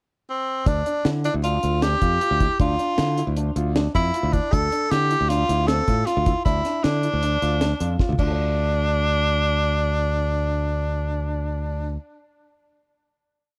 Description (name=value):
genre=progressive instrumental, band music in an uneven meter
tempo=156 BPM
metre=5/4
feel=straight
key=D minor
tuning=A4 = 440 Hz
part: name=bright tenor saxophone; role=melody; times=0.3-12.0 s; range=C4 to A4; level=-26 LUFS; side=equal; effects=none
part: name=dark baby grand piano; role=arpeggios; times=0.7-12.1 s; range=C4 to D5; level=-33 LUFS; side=equal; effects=none
part: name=modern bright fingered electric bass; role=bass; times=0.7-12.0 s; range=D2 to D3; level=-26 LUFS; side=equal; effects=none
part: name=deep reggae drum kit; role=drums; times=0.7-8.3 s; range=crash cymbal, hi-hat, kick drum, snare drum, toms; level=-27 LUFS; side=equal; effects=none
room=light reverb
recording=dark, warm production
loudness=-22 LUFS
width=mono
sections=0.0-0.7 pickup bar; 0.7-8.4 A section; 8.4-12.2 final hit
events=drum fill 8.0-8.4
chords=0.0 N.C.; 0.7 Dm; 4.5 Fmaj7/D; 6.5 Dm